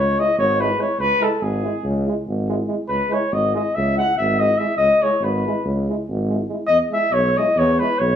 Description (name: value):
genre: balkan folk, Balkan brass band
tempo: 284 BPM (eighths)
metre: 9/8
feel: straight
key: C# minor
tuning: A4 = 440 Hz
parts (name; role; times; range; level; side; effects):
- mellow flugelhorn; melody; 0.0-8.2 s; G#4 to F#5; -18 LUFS; left 1 dB; plate reverb
- warm tuba; bass; 0.0-8.2 s; G#1 to E2; -22 LUFS; equal; none
- clear trombone; accompaniment; 0.2-7.9 s; G#3; -28 LUFS; right 4 dB; none
- warm euphonium; accompaniment; 0.2-7.9 s; E4; -30 LUFS; left 2 dB; none
room: wet small room reverb, RT60 0.5 s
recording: small room reverb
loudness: -17 LUFS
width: side -9 dB against mid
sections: 0.0-8.2 A section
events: none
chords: 0.0 C#m; 6.7 E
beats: 0.14 0.35 0.56 0.77 | 0.98 1.19 1.40 1.61 1.82 2.03 2.25 2.46 2.67 | 2.88 3.09 3.30 3.51 3.72 3.93 4.15 4.36 4.57 | 4.78 4.99 5.20 5.42 5.63 5.84 6.05 6.26 6.47 | 6.68 6.90 7.11 7.32 7.53 7.74 7.96